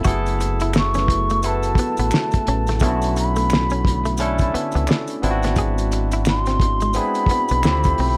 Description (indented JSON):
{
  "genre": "R&B, neo-soul",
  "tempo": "87 BPM",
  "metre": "4/4",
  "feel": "swing 60% on 16ths",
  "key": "F# minor",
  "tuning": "A4 = 440 Hz",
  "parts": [
    { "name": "semi-hollow electric guitar", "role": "second line", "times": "0.0-8.1 s", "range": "G#3 to G#4", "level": "-30 LUFS", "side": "equal", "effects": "plate reverb" },
    { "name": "barky tine electric piano", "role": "accompaniment", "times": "0.0-8.2 s", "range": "A3 to A4", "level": "-27 LUFS", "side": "equal", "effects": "overdrive, plate reverb" },
    { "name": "hollow soft pad", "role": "sustained chords", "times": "0.0-8.2 s", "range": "D3 to B4", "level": "-35 LUFS", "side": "equal", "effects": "none" },
    { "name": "maracas and finger snaps", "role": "percussion", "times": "0.0-8.0 s", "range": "none", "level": "-36 LUFS", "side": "equal", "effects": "none" },
    { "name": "deep dub fingered electric bass", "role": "bass", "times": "0.1-8.2 s", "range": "F#1 to D2", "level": "-24 LUFS", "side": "equal", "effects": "none" },
    { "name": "cloth-damped thuddy drum kit", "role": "drums", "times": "0.1-8.2 s", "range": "hi-hat, kick drum, snare drum", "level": "-24 LUFS", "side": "equal", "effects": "none" },
    { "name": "bansuri", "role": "melody", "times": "0.8-8.2 s", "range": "A5 to C#6", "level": "-25 LUFS", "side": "equal", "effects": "plate reverb" }
  ],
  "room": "light reverb",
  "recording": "none",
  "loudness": "-20 LUFS",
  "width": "mono",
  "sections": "0.1-8.2 A section",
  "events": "none",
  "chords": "0.1 F#m11; 2.8 Bm9; 5.2 G#7alt; 7.6 Dm7"
}